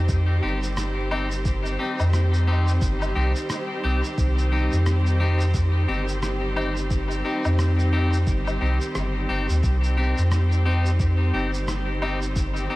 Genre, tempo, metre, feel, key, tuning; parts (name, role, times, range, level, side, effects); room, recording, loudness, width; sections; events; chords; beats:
ambient dub; 88 BPM; 4/4; swing 60% on 16ths; C minor; A4 = 435 Hz
bright symphonic string section; sustained chords; 0.0-12.8 s; Eb3 to C5; -29 LUFS; right 1 dB
soft dub sub bass; bass; 0.0-12.7 s; G1 to F2; -22 LUFS; equal
electronic kick drum; drums; 0.1-12.5 s; -25 LUFS; equal
electronic shaker, rim click and woodblock; drums; 0.1-12.7 s; -34 LUFS; equal; dub echo
clean electric guitar; stabs; 0.4-12.8 s; C4 to G4; -29 LUFS; left 2 dB; spring reverb, dub echo
light reverb, digital ambience; vinyl crackle; -20 LUFS; side -19 dB against mid
0.0-12.8 A section
0.0 Cm
0.09 0.77 | 1.45 2.13 2.82 3.50 | 4.18 4.86 5.54 6.23 | 6.91 7.59 8.27 8.95 | 9.63 10.32 11.00 11.68 | 12.36